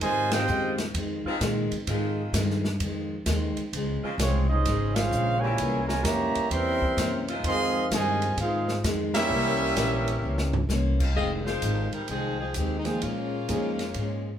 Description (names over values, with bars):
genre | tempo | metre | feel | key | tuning
jazz, big band swing | 129 BPM | 4/4 | swing 66% on 8ths | F minor | A4 = 439 Hz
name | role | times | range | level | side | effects
warm trumpet section | melody | 0.0-0.8, 4.2-10.7 s | Ab3 to C6 | -27 LUFS | right 2 dB | none
warm trombone section | second line | 0.0-0.8, 4.2-10.7 s | Bb2 to Ab4 | -31 LUFS | equal | none
picked steel-string acoustic guitar | accompaniment | 0.0-14.3 s | F2 to Db4 | -32 LUFS | left 2 dB | none
upright bass | bass | 0.0-14.4 s | F1 to Bb2 | -29 LUFS | equal | none
open jazz drum kit | drums | 0.0-14.1 s | crash cymbal, hi-hat, kick drum, ride cymbal, snare drum, toms | -33 LUFS | equal | none
mellow saxophone section | sustained chords | 0.3-11.6 s | Db3 to C5 | -35 LUFS | equal | none
clear saxophone section | melody | 11.2-14.4 s | Eb3 to Eb5 | -31 LUFS | left 3 dB | none
warm concert grand piano | accompaniment | 12.9-13.8 s | F3 to Ab4 | -32 LUFS | right 2 dB | none
room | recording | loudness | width
wet large studio reverb, RT60 0.9 s | heard from further back in the room | -24 LUFS | side -9 dB against mid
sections
0.0-11.2 A section; 11.2-14.4 B section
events
band accent 0.3, 4.9, 9.1; drum fill 10.2-10.7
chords
0.0 Fm7; 3.7 Dbmaj7; 5.6 C7b9; 7.5 Fm7; 9.3 C7b9; 11.2 Fm7; 13.0 Bbm7